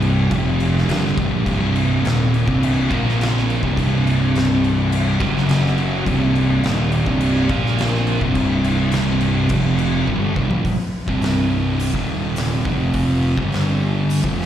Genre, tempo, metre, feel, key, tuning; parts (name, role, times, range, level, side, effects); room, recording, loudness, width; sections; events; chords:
stoner and doom metal; 104 BPM; 4/4; straight; C minor; A4 = 440 Hz
deep rumbling drone; sustained chords; 0.0-14.5 s; C4 to D5; -33 LUFS; left 1 dB
thick fuzz guitar; riff; 0.0-14.5 s; C2 to Bb3; -22 LUFS; left 6 dB; distortion, slapback echo
thick fuzz guitar; riff; 0.0-14.5 s; C2 to Bb3; -20 LUFS; right 5 dB; distortion
fuzz fingered electric bass; bass; 0.0-14.5 s; C1 to Bb1; -23 LUFS; equal; overdrive
oversized low-tuned drum kit; drums; 0.0-14.5 s; crash cymbal, hi-hat, kick drum, snare drum, toms; -24 LUFS; left 1 dB
little or no reverb; live gig heard through the venue's PA, recital hall reverb; -16 LUFS; side -10 dB against mid
0.0-10.7 A section; 10.7-14.5 B section
drum fill 10.1-10.7
0.3 F5; 0.9 Cm; 2.9 Bb5; 3.6 C5; 5.2 F#5; 6.1 Cm; 7.5 Bb5; 8.2 C5; 9.5 F5; 10.1 C5; 11.9 Eb5; 12.7 F5; 13.4 G5